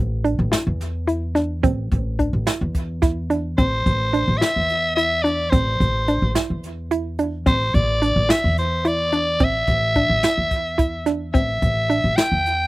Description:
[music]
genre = progressive instrumental, band music in an uneven meter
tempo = 216 BPM (eighths)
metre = 7/8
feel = straight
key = A minor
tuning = A4 = 440 Hz
[part]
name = upright bass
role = bass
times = 0.0-12.7 s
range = A1 to E2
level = -23 LUFS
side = equal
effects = none
[part]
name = hollow square pluck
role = arpeggios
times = 0.2-12.5 s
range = C4 to E4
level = -23 LUFS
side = right 1 dB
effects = chorus, slapback echo
[part]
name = jazz brush drum kit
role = drums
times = 0.2-12.6 s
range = hi-hat, kick drum, snare drum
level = -22 LUFS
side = equal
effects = none
[part]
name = raspy soprano saxophone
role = melody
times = 3.6-12.7 s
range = C5 to G5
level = -21 LUFS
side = equal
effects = none
[sound]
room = little or no reverb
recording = recorded outdoors, with no room sound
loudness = -18 LUFS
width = side -18 dB against mid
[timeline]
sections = 0.0-3.6 A section; 3.6-12.7 B section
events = none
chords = 0.0 Am

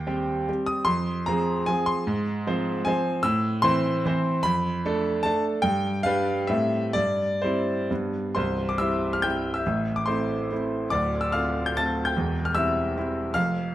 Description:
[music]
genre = classical, romantic triple-time dance for piano with dotted rhythms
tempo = 121-160 BPM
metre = 3/4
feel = rubato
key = C major from 3.2 s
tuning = A4 = 441 Hz
[part]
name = clear baby grand piano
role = solo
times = 0.0-13.7 s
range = C1 to A6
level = -23 LUFS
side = equal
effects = none
[sound]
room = moderate recital hall reverb, RT60 1.5 s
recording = close, detailed microphones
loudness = -23 LUFS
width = side -14 dB against mid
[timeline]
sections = 0.0-8.4 A section; 8.4-13.7 B section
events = none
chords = 0.0 Cm/Eb; 0.9 Fm; 2.1 Fm/Ab; 3.2 Am; 4.4 Dm/F; 5.6 G; 6.5 Am7; 7.0 C/G; 7.9 G; 8.4 C; 9.7 Am; 10.9 Dm7; 12.1 C/E

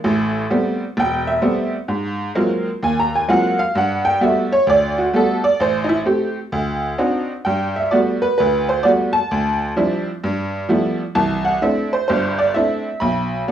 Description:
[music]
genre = solo jazz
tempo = 130 BPM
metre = 4/4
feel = swing 66% on 8ths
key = G major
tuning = A4 = 436 Hz
[part]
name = tack piano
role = solo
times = 0.0-13.5 s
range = E1 to B5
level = -16 LUFS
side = right 1 dB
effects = none
[sound]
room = moderate large studio reverb, RT60 0.9 s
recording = worn, warbling old tape, cassette tape, warbly pitch drift, small room ambience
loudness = -16 LUFS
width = side -10 dB against mid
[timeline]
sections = 0.0-7.4 A section; 7.4-13.5 B section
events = honky-tonk piano solo 0.0-7.4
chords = 0.0 Am9; 1.9 Ab13; 3.7 Gmaj9; 5.6 Am7; 6.5 D7b9; 7.4 Gmaj9; 9.3 Dm11; 10.2 G13; 11.2 C69; 13.0 N.C.

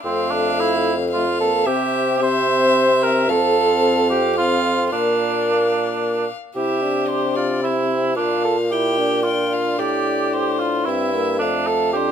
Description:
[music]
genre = classical, renaissance-style consort dance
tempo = 111 BPM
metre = 3/4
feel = straight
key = C mixolydian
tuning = A4 = 440 Hz
[part]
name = warm violin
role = melody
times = 0.0-12.1 s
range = C5 to G5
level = -26 LUFS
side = left 6 dB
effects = none
[part]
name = mellow cor anglais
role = second line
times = 0.0-12.1 s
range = C4 to C5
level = -20 LUFS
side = right 4 dB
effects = none
[part]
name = mellow bassoon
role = bass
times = 0.0-12.1 s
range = F2 to C3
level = -21 LUFS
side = equal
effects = none
[part]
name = clear trombone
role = accompaniment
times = 0.1-12.1 s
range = A3 to F4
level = -26 LUFS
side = left 3 dB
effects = none
[sound]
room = moderate stone room reverb, RT60 1.1 s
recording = minimal, uncompressed stereo recording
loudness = -17 LUFS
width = side -8 dB against mid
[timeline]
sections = 0.0-6.5 A section; 6.5-12.1 B section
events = none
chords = 0.0 F; 1.7 C; 3.3 F; 4.9 Bb; 6.5 C; 8.2 Bb; 9.8 Am; 11.4 F

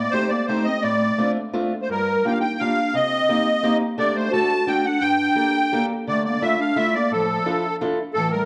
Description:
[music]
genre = musette waltz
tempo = 172 BPM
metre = 3/4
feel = straight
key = G minor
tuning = A4 = 440 Hz
[part]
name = musette accordion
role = melody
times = 0.0-8.5 s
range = A4 to A5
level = -24 LUFS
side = equal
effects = none
[part]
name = dark clarinet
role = second line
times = 0.0-8.5 s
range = E3 to F#4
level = -28 LUFS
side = equal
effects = none
[part]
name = fingerpicked steel-string acoustic guitar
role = accompaniment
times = 0.0-8.4 s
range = G2 to A4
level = -28 LUFS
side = equal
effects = none
[sound]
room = wet recital hall reverb, RT60 1.6 s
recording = dark, warm production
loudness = -21 LUFS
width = mono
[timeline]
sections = 0.0-6.1 A section; 6.1-8.5 B section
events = none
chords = 0.0 Am7b5; 0.8 Dm7/A; 1.9 Gm7; 2.9 Cm7; 4.0 Dsus4; 4.3 D; 5.0 Gmadd9; 6.1 Dmadd9

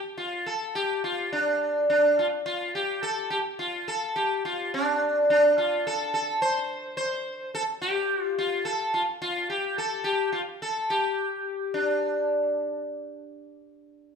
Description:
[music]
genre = andean folk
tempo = 71 BPM (dotted quarters)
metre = 6/8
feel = straight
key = D minor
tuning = A4 = 440 Hz
[part]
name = sitar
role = solo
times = 0.2-12.8 s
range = D4 to C5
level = -24 LUFS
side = equal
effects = none
[sound]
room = moderate scoring stage reverb, RT60 1.7 s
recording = minimal, uncompressed stereo recording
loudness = -24 LUFS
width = side -6 dB against mid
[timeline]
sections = 0.0-13.4 A section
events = speeding up 0.0-14.2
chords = none

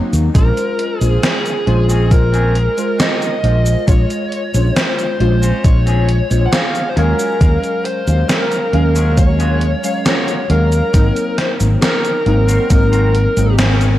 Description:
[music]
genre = vaporwave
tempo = 68 BPM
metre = 4/4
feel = straight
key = Bb minor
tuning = A4 = 440 Hz
[part]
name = warbly lo-fi synth keys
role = accompaniment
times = 0.0-14.0 s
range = Gb3 to F5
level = -21 LUFS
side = equal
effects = analog chorus
[part]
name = clean electric guitar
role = riff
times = 0.1-13.9 s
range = C4 to Bb4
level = -27 LUFS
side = left 2 dB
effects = lush chorus, analog delay
[part]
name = mellow fretless electric bass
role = bass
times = 0.1-14.0 s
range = Ab1 to Eb2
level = -14 LUFS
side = equal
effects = none
[part]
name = gated 80s digital drum machine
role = drums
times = 0.1-14.0 s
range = cabasa, hi-hat, snare drum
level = -19 LUFS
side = equal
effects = gated reverb, gated reverb snare
[part]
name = electronic kick drum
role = drums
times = 0.3-12.9 s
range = none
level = -12 LUFS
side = equal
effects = none
[part]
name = bluesy overdriven lead guitar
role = melody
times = 0.4-13.5 s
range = Ab4 to Gb5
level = -20 LUFS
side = equal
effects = distortion, tape echo
[sound]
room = light reverb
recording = none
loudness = -12 LUFS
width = side -14 dB against mid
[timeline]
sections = 0.0-14.0 A section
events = band accent 13.6-14.0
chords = 0.4 Bbm9; 7.0 Ebm11; 10.9 Ab9

